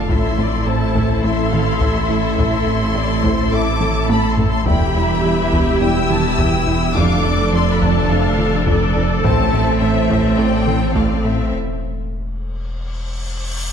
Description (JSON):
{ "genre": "cinematic, hybrid orchestral and electronic film score", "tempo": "105 BPM", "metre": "4/4", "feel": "straight", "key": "unclear", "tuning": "A4 = 440 Hz", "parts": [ { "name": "warm symphonic violin section", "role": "melody", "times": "0.0-11.5 s", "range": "E5 to E6", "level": "-24 LUFS", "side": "left 4 dB", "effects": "none" }, { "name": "rich symphonic violin section", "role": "second line", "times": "0.0-11.5 s", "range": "C5 to A5", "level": "-26 LUFS", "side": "left 3 dB", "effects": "none" }, { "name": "clear symphonic viola section", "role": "accompaniment", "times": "0.0-11.5 s", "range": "C4 to A4", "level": "-23 LUFS", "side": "equal", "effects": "none" }, { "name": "airy breathy pad", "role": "sustained chords", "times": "0.0-11.5 s", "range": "E3 to E5", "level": "-25 LUFS", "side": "equal", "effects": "chorus" }, { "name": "rich symphonic cello section", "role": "bass", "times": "0.0-11.5 s", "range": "E2 to A2", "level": "-24 LUFS", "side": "right 4 dB", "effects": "none" }, { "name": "rich symphonic double bass section", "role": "bass", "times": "0.0-11.5 s", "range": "E1 to A1", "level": "-24 LUFS", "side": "right 3 dB", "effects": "none" }, { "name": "warm sub bass", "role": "bass", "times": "0.0-13.7 s", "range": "E1 to A1", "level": "-24 LUFS", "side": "left 1 dB", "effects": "none" }, { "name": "mellow French horn section", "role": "sustained chords", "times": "0.1-10.6 s", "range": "G3 to E4", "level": "-28 LUFS", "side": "left 5 dB", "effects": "none" }, { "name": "thumb-piano-like synth pluck", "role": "arpeggios", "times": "0.1-11.4 s", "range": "D3 to A4", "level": "-28 LUFS", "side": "left 3 dB", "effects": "chorus, digital delay" }, { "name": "plucky analog bass", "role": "riff", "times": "0.1-11.4 s", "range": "E2 to A2", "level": "-23 LUFS", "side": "right 3 dB", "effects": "none" }, { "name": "taiko ensemble", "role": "drums", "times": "0.1-11.5 s", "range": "none", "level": "-24 LUFS", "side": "left 1 dB", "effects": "none" }, { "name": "cymbal swell", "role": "sound effects", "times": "12.6-13.7 s", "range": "none", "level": "-30 LUFS", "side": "left 2 dB", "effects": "none" } ], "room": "moderate scoring stage reverb, RT60 1.8 s", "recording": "dark, warm production", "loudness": "-14 LUFS", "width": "side -7 dB against mid", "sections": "0.0-13.7 A section", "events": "drum fill 3.8-4.7; break 11.5-13.7; cymbal swell 12.6-13.7", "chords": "0.1 Am; 4.7 Em; 7.0 Dm/F; 9.2 Am; 11.5 N.C." }